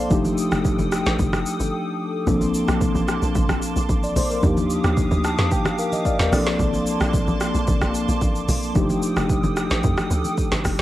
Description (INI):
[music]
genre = amapiano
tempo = 111 BPM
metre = 4/4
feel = straight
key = Bb major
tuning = A4 = 440 Hz
[part]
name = mellow tine electric piano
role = accompaniment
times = 0.0-10.8 s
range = F3 to A5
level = -23 LUFS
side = left 1 dB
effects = medium stereo tremolo, cassette tape
[part]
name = hollow soft pad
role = sustained chords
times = 0.0-10.8 s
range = Bb3 to Eb6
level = -29 LUFS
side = right 1 dB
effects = ensemble chorus, sidechain pumping, cassette tape
[part]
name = tight log drum bass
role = bass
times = 0.0-10.8 s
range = F1 to F2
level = -25 LUFS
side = equal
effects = none
[part]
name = afro-pop drum kit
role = drums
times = 0.1-10.8 s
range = hi-hat, kick drum, rim click, shaker, snare drum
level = -24 LUFS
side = equal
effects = cassette tape
[part]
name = congas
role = percussion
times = 0.1-10.8 s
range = none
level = -29 LUFS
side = right 2 dB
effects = none
[sound]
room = little or no reverb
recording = home recording on cassette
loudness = -19 LUFS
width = side -14 dB against mid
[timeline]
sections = 0.0-2.3 A section; 2.3-10.8 A section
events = drop 0.0-2.3, 2.3-10.8; break 1.7-2.3; tine electric piano fill 5.0-6.6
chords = 0.1 F13; 2.3 Bbmaj9; 4.4 Ebmaj9; 6.3 Bbmaj9; 8.8 F13